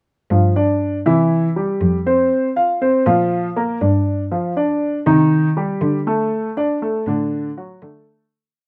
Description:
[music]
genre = latin, Cuban son and guajira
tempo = 120 BPM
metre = 4/4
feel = straight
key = unclear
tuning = A4 = 440 Hz
[part]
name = warm baby grand piano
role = arpeggios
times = 0.3-8.2 s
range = D3 to F5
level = -19 LUFS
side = equal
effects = none
[part]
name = warm cello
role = bass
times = 0.3-8.3 s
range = F2 to D3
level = -22 LUFS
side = equal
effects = none
[sound]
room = light reverb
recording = none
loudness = -18 LUFS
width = mono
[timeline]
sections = 0.3-8.3 verse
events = fade-out 6.3-8.3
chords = 0.3 G5; 1.3 C; 2.3 Fsus4; 3.3 Bb6; 4.3 Cmadd9; 5.3 Cm; 6.3 D

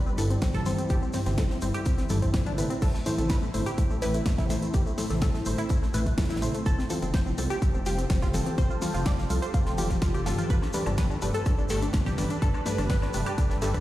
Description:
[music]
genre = progressive house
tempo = 125 BPM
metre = 4/4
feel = straight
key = unclear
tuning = A4 = 440 Hz
[part]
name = shimmering ambient pad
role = sustained chords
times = 0.0-13.8 s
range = F3 to B4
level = -35 LUFS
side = right 1 dB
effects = chorus, built-in reverb, phaser, sidechain pumping
[part]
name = wide unison pluck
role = stabs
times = 0.0-13.8 s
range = G2 to C5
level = -32 LUFS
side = equal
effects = sidechain pumping, dub echo
[part]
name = tight sequenced synth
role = arpeggios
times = 0.1-13.8 s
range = A3 to D5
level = -34 LUFS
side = left 1 dB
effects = chorus, phaser, sidechain pumping, dub echo
[part]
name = dark detuned saw bass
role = bass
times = 0.1-13.8 s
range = F1 to C2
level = -30 LUFS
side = equal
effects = sidechain pumping
[part]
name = egg shaker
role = percussion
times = 0.1-13.8 s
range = none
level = -43 LUFS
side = left 2 dB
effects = none
[part]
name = pop drum kit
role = drums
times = 0.2-13.8 s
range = crash cymbal, hi-hat, rim click, snare drum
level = -36 LUFS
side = equal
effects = none
[part]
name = tight funk drum kit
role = drums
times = 0.2-13.7 s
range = hi-hat, snare drum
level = -46 LUFS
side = left 1 dB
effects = none
[part]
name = electronic kick drum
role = drums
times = 0.4-13.8 s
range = none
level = -26 LUFS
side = equal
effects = none
[part]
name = electronic toms, congas and woodblock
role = percussion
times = 0.5-13.7 s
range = none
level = -36 LUFS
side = left 1 dB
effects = sidechain pumping on perc, sidechain pumping on toms
[sound]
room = light reverb, digital ambience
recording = played on a big sound system in a bare room, stone room reverb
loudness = -24 LUFS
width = side -15 dB against mid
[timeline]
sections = 0.0-13.8 A section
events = filter sweep on synth pluck 0.0-13.8; filter sweep on ambient pad 0.0-13.8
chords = 0.0 C/G; 6.7 Fadd9; 10.5 Gadd9

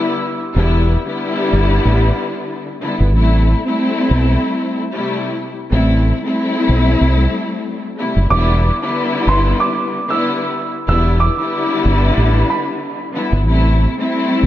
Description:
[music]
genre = hip hop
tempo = 93 BPM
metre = 4/4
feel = swing 57% on 16ths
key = E minor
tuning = A4 = 438 Hz
[part]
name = warm upright piano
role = melody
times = 0.0-0.1, 8.3-12.7 s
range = B5 to E6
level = -21 LUFS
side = right 3 dB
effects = high-pass filter, low-pass filter, analog delay
[part]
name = warm studio string section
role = accompaniment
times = 0.0-14.5 s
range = C3 to E4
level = -17 LUFS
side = left 2 dB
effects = cassette tape, high-pass filter, low-pass filter
[part]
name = fingered electric bass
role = bass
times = 0.6-14.5 s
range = E1 to C2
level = -13 LUFS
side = equal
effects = none
[sound]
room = light reverb, small room ambience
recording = none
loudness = -14 LUFS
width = side -13 dB against mid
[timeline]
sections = 0.0-14.5 A section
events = none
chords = 0.0 Em7; 3.1 Am7; 8.3 Em7; 13.5 Am7

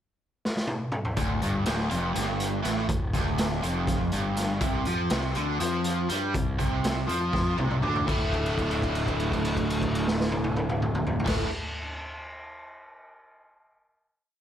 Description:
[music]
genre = psychedelic rock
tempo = 243 BPM (eighths)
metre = 7/8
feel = straight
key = D minor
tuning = A4 = 440 Hz
[part]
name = raw garage drum kit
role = drums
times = 0.5-11.4 s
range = crash cymbal, hi-hat, kick drum, snare drum, toms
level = -29 LUFS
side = equal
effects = none
[part]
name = biting overdriven guitar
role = riff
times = 1.2-11.5 s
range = D2 to E4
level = -28 LUFS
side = equal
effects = harmonic tremolo
[part]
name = fuzz picked electric bass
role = bass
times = 1.2-11.5 s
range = D1 to G2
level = -31 LUFS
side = equal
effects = overdrive
[sound]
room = light reverb, studio reverb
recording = none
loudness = -25 LUFS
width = side -10 dB against mid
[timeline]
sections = 0.0-1.2 pickup bar; 1.2-8.1 groove; 8.1-11.5 final chord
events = drum fill 0.4-1.2, 7.3-8.1; held note 8.1-11.2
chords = 0.0 N.C.; 1.2 Dm; 4.6 Csus4; 8.1 Dsus2

